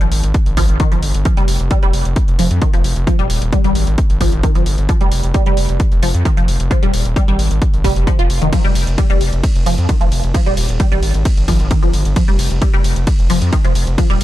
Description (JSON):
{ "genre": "driving peak-time techno", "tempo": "132 BPM", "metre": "4/4", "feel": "straight", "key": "F minor", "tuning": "A4 = 440 Hz", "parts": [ { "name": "resonant blip pluck", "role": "riff", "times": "0.0-14.1 s", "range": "Eb3 to F4", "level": "-20 LUFS", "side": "equal", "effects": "phaser, overdrive, analog chorus, sidechain pumping, digital delay" }, { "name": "gritty driven synth bass", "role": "bass", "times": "0.0-14.2 s", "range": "Eb1 to F2", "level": "-16 LUFS", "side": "equal", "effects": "sidechain pumping" }, { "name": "techno drum kit", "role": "drums", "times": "0.0-14.2 s", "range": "hi-hat, ride cymbal", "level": "-27 LUFS", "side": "equal", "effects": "overdrive, small room ambience" }, { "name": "electronic kick drum", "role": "drums", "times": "0.3-14.1 s", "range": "none", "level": "-14 LUFS", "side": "equal", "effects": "overdrive, small room ambience" } ], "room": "little or no reverb", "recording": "dark, warm production", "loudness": "-12 LUFS", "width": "side -15 dB against mid", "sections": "0.0-14.2 A section", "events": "none", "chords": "0.0 Fm" }